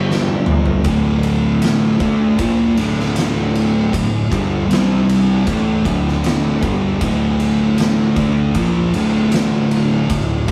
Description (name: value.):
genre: stoner and doom metal.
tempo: 78 BPM.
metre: 4/4.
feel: straight.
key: D minor.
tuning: A4 = 435 Hz.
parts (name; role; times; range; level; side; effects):
crunchy overdriven guitar; riff; 0.0-0.8 s; G2 to G3; -31 LUFS; equal; none.
thick fuzz guitar; riff; 0.0-10.5 s; D2 to D4; -20 LUFS; equal; distortion.
thick fuzz guitar; riff; 0.0-10.5 s; D2 to D4; -22 LUFS; equal; distortion.
fuzz picked electric bass; bass; 0.0-10.5 s; D1 to D2; -26 LUFS; equal; overdrive.
oversized low-tuned drum kit; drums; 0.1-10.5 s; kick drum, ride cymbal, snare drum, toms; -23 LUFS; equal; none.
room: moderate small room reverb, RT60 0.5 s.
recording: rough rehearsal-room recording, vinyl crackle.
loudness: -16 LUFS.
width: mono.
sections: 0.8-10.5 A section.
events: drum fill 0.1-0.8.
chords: 0.0 G5; 0.8 Dm; 4.7 C5; 5.5 Dm.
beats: 0.07 | 0.84 1.61 2.38 3.15 | 3.93 4.70 5.47 6.24 | 7.01 7.78 8.55 9.32 | 10.09.